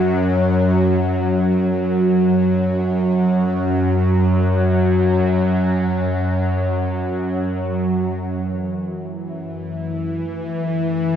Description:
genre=dark ambient drone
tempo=free time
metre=none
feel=none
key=F# minor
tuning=A4 = 439 Hz
part: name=bowed-like drone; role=drone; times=0.0-11.2 s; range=F#2 to F#3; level=-17 LUFS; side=equal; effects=built-in reverb, phaser
part: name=sweeping resonant pad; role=sustained chords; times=8.2-11.2 s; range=F#2 to E4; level=-36 LUFS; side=equal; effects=wide subtle chorus
room=wet cathedral reverb, RT60 5.7 s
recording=worn, warbling old tape, cassette tape, warbly pitch drift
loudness=-16 LUFS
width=side -9 dB against mid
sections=0.0-8.2 A section; 8.2-11.2 B section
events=none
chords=0.0 N.C.; 8.2 F#m7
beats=free time

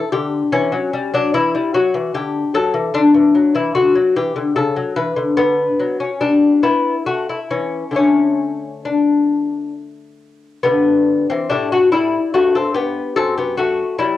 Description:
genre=classical, baroque-style dance for lute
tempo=66-76 BPM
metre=3/4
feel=rubato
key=D major, G major from 10.6 s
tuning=A4 = 440 Hz
part: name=lute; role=solo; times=0.0-14.2 s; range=F#2 to B4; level=-14 LUFS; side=left 3 dB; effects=cassette tape
room=moderate studio reverb, RT60 0.6 s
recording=home recording on cassette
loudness=-14 LUFS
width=side -13 dB against mid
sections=0.0-10.6 A section; 10.6-14.2 A section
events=none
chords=0.0 Dsus4; 0.5 Em69; 2.1 Dadd9; 4.6 A/C#; 5.4 D; 6.2 Em/G; 7.1 A; 8.0 D5; 10.6 G; 13.2 Gmaj13/F#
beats=| 0.53 1.34 2.15 | 2.94 3.75 4.56 | 5.38 6.21 7.07 | 7.96 8.85 9.75 | 10.64 11.50 12.34 | 13.16 13.99

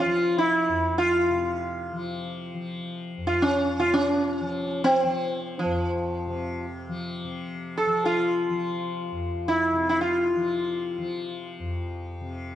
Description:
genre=indian classical, Hindustani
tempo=free time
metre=none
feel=none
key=unclear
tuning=A4 = 436 Hz
part: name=sitar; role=melody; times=0.0-11.8 s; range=F3 to A4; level=-24 LUFS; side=equal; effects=none
part: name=tanpura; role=drone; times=0.0-12.6 s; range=F2 to F3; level=-33 LUFS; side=left 2 dB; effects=none
room=moderate recital hall reverb, RT60 1.6 s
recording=nothing above 10.5 kHz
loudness=-24 LUFS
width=side -11 dB against mid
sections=0.0-7.2 A section; 7.2-12.6 A section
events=none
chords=none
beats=free time

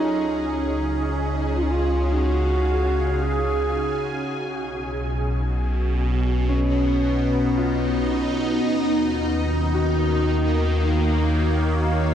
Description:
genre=ambient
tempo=55 BPM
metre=4/4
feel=straight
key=B lydian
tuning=A4 = 440 Hz
part: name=wooden-headed alto flute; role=melody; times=0.0-4.0 s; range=D#4 to G#4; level=-27 LUFS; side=right 1 dB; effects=shimmer reverb, tape echo
part: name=evolving wavetable pad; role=sustained chords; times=0.0-12.1 s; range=B2 to G#5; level=-24 LUFS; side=equal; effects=phaser, built-in reverb, shimmer reverb
part: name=concert harp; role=arpeggios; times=0.0-12.1 s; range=C#4 to F#4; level=-29 LUFS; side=left 2 dB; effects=shimmer reverb, tape echo
part: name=round analog bass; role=bass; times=0.0-12.1 s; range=B1 to D#2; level=-24 LUFS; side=equal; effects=none
room=wet huge ambient reverb, RT60 7.9 s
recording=worn, warbling old tape, cassette tape, warbly pitch drift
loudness=-20 LUFS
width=side -9 dB against mid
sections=0.0-12.1 A section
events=none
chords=0.0 C#; 4.3 B; 8.7 D#m7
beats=1.02 2.11 3.21 | 4.31 5.40 6.49 7.57 | 8.65 9.74 10.82 11.90

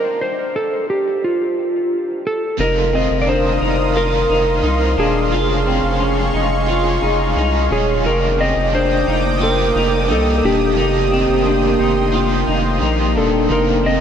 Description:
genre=dream pop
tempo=88 BPM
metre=4/4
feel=straight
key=unclear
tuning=A4 = 440 Hz
part: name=clean lap steel guitar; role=melody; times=0.0-14.0 s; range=F4 to Eb5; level=-19 LUFS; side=right 1 dB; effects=ping-pong delay
part: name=overdriven electric guitar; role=accompaniment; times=2.6-14.0 s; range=F2 to G4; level=-25 LUFS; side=right 2 dB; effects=tremolo, wide subtle chorus
part: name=lush unison pad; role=sustained chords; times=3.0-14.0 s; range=Bb3 to Eb6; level=-22 LUFS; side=equal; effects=chorus
part: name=semi-hollow electric guitar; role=arpeggios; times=2.6-14.0 s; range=C4 to F4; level=-21 LUFS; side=left 3 dB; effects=lush chorus, ping-pong delay
part: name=saturated sub bass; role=bass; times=2.6-14.0 s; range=Eb1 to C2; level=-20 LUFS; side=equal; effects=none
room=wet huge ambient reverb, RT60 7.8 s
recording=dreamy mix soaked in reverb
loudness=-14 LUFS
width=side -8 dB against mid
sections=0.0-2.6 A section; 2.6-14.0 A section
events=stop 0.0-2.6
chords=0.0 N.C.; 2.6 F7sus4; 5.3 Dbmaj7/F; 8.0 Ebmaj7/F; 13.5 F7sus4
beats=0.54 1.23 1.91 | 2.59 3.27 3.95 4.63 | 5.32 6.00 6.68 7.36 | 8.04 8.72 9.41 10.09 | 10.77 11.45 12.13 12.82 | 13.50

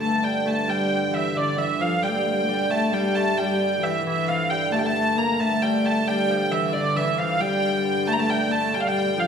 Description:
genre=medieval dance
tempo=89 BPM (dotted quarters)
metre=6/8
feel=straight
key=unclear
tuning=A4 = 440 Hz
part: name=clear hurdy-gurdy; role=melody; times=0.0-9.3 s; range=D5 to Bb5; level=-24 LUFS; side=right 1 dB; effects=none
part: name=lute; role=second line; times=0.0-9.3 s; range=D3 to Bb3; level=-28 LUFS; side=right 4 dB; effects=none
part: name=rich viola da gamba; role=second line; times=0.0-9.3 s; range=D3 to Bb3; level=-25 LUFS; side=left 4 dB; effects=none
part: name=hand-pumped harmonium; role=drone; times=0.0-9.3 s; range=G2 to D3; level=-31 LUFS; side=right 2 dB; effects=none
room=wet recital hall reverb, RT60 1.5 s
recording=none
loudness=-20 LUFS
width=side -7 dB against mid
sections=0.0-9.3 A section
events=none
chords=none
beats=0.67 | 1.35 2.02 | 2.70 3.37 | 4.05 4.72 | 5.39 6.06 | 6.73 7.40 | 8.07 8.74

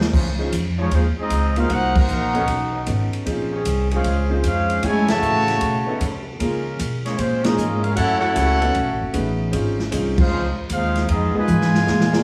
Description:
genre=jazz, big band swing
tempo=153 BPM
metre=4/4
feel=swing 66% on 8ths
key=Db major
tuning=A4 = 440 Hz
part: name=clear trombone section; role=sustained chords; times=0.0-12.0 s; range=Eb3 to Db5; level=-33 LUFS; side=equal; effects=none
part: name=upright bass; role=bass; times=0.0-12.2 s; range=Gb1 to Db3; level=-26 LUFS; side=equal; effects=none
part: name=swinging big-band drum kit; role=drums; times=0.0-12.2 s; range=crash cymbal, hi-hat, kick drum, ride cymbal, snare drum, toms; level=-27 LUFS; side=equal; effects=none
part: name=warm concert grand piano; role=accompaniment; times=0.4-12.2 s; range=Gb3 to C5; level=-28 LUFS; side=equal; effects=none
part: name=warm trumpet section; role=melody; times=0.8-12.2 s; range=Ab3 to A5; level=-25 LUFS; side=equal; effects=none
part: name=warm trombone section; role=second line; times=0.8-12.2 s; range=Cb3 to Gb4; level=-27 LUFS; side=equal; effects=none
room=wet large studio reverb, RT60 1.2 s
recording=heard from further back in the room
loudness=-20 LUFS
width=mono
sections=0.1-12.2 A section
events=band accent 1.9, 5.0, 7.4, 10.1; drum fill 11.5-12.2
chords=0.1 Dbmaj9; 1.7 Cm7b5; 2.5 Cb9; 3.3 Bbm11; 4.8 Gbm7; 5.6 Cb9; 6.4 Db6; 8.0 Gbm7; 8.8 Cb9; 9.5 Dbmaj9; 11.1 Fm7b5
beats=| 0.13 0.53 0.92 1.31 | 1.70 2.09 2.48 2.88 | 3.27 3.66 4.05 4.44 | 4.83 5.23 5.62 6.01 | 6.40 6.79 7.18 7.58 | 7.97 8.36 8.75 9.14 | 9.53 9.92 10.31 10.71 | 11.10 11.49 11.88

